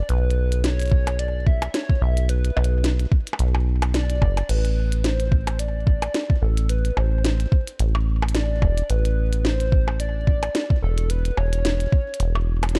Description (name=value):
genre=IDM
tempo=109 BPM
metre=4/4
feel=swing 56% on 16ths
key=unclear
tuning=A4 = 440 Hz
part: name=warbly nostalgic lead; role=melody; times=0.0-12.8 s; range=A4 to E5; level=-33 LUFS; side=equal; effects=analog chorus, dub echo
part: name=deep acid bass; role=bass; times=0.0-12.8 s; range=E1 to B1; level=-23 LUFS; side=equal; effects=tube saturation
part: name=glitchy drum kit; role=drums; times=0.1-12.8 s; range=crash cymbal, hi-hat, percussion blips, snare drum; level=-30 LUFS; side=equal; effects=overdrive
part: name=electronic kick drum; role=drums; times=0.9-12.0 s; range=none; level=-20 LUFS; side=equal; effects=overdrive
room=little or no reverb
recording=dark, warm production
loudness=-22 LUFS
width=mono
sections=0.0-12.8 A section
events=none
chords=0.0 Bmadd9; 4.5 E7sus4